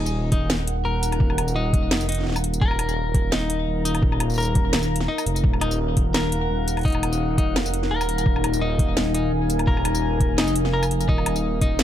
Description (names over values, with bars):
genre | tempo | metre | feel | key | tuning
half-time drum and bass | 170 BPM | 4/4 | swing 54% on 16ths, half-time | Eb minor | A4 = 441 Hz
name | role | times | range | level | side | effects
deep dark ambient pad | sustained chords | 0.0-11.8 s | Eb4 to Bb5 | -28 LUFS | left 1 dB | chorus, built-in reverb, vintage 12-bit sampler grit, sidechain pumping
clean electric guitar | arpeggios | 0.0-11.8 s | Eb4 to Bb4 | -28 LUFS | left 2 dB | ping-pong delay
dark detuned saw bass | bass | 0.0-11.8 s | Eb1 to F1 | -24 LUFS | equal | none
drum and bass drum kit | drums | 0.1-11.8 s | hi-hat, snare drum, tambourine, woodblock | -26 LUFS | equal | none
electronic kick drum | drums | 0.3-11.7 s | none | -22 LUFS | equal | none
room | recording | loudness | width
digital ambience | none | -20 LUFS | side -11 dB against mid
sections
0.0-11.8 A section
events
none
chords
0.0 Ebmadd9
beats
0.14 0.50 0.85 | 1.20 1.55 1.91 2.26 | 2.61 2.97 3.32 3.67 | 4.03 4.38 4.73 5.08 | 5.44 5.79 6.14 6.50 | 6.85 7.20 7.55 7.91 | 8.26 8.61 8.97 9.32 | 9.67 10.03 10.38 10.73 | 11.09 11.44 11.79